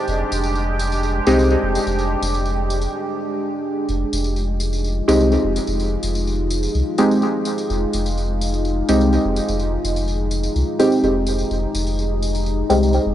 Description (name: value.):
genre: dub techno.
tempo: 126 BPM.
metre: 4/4.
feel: straight.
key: F dorian.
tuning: A4 = 440 Hz.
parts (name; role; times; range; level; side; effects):
deep dark ambient pad; sustained chords; 0.0-13.1 s; Ab3 to G4; -24 LUFS; equal; chorus, built-in reverb.
warm sub bass; bass; 0.1-13.1 s; F1 to C2; -21 LUFS; equal; tube saturation.
tambourine; percussion; 0.1-13.0 s; none; -31 LUFS; left 2 dB; none.
deep mellow chord stab; stabs; 1.3-1.5, 5.1-13.0 s; Ab3 to G4; -20 LUFS; equal; chorus, phaser, dub echo.
room: light reverb, digital ambience.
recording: dry, gritty hardware recording, cassette tape, nothing above 10.9 kHz.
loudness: -17 LUFS.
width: side -12 dB against mid.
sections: 0.0-3.9 A section; 3.9-13.1 A section.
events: break 2.9-3.9; filter sweep on synth stab 3.9-13.1.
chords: 0.0 Fm7.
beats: | 0.08 0.56 1.03 1.51 | 1.98 2.46 2.94 3.41 | 3.89 4.36 4.84 5.32 | 5.79 6.27 6.75 7.22 | 7.70 8.17 8.65 9.13 | 9.60 10.08 10.55 11.03 | 11.51 11.98 12.46 12.94.